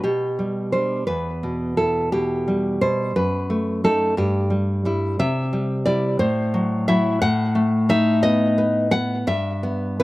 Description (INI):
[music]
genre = romantic piece for solo classical guitar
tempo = 58 BPM (dotted quarters)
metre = 6/8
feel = rubato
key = unclear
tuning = A4 = 440 Hz
[part]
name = nylon-string guitar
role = solo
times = 0.0-10.0 s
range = E2 to F#5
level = -19 LUFS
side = equal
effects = slapback echo
[sound]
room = light reverb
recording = recorded outdoors, with no room sound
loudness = -19 LUFS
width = side -18 dB against mid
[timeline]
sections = 0.0-10.0 A section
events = none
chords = 0.0 G/B; 1.1 Em; 3.1 B7/F#; 4.2 Em/G; 5.2 C; 6.2 F#m7b5/A; 7.2 B7/A; 9.3 Em/G